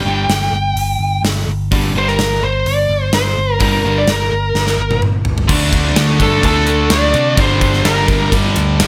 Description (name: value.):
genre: hard rock.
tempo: 127 BPM.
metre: 4/4.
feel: straight.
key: G minor.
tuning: A4 = 441 Hz.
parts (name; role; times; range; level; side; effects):
bluesy overdriven lead guitar; melody; 0.0-8.3 s; A4 to G5; -19 LUFS; equal; distortion, slapback echo.
overdriven semi-hollow guitar; riff; 0.0-8.9 s; G2 to D4; -22 LUFS; equal; none.
tight distorted guitar; riff; 0.0-8.9 s; G2 to D4; -25 LUFS; equal; distortion.
picked electric bass; bass; 0.0-8.9 s; G1 to C3; -20 LUFS; equal; none.
gated 80s drum kit; drums; 0.3-8.9 s; crash cymbal, hi-hat, kick drum, ride cymbal, snare drum, toms; -20 LUFS; equal; none.
tight distorted guitar; riff; 5.5-8.9 s; G2 to D4; -25 LUFS; equal; none.
room: light reverb.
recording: none.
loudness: -15 LUFS.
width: mono.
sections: 0.0-5.5 A section; 5.5-8.9 B section.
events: drum fill 4.6-5.5.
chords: 0.0 Gm; 5.5 D5; 7.4 Gm.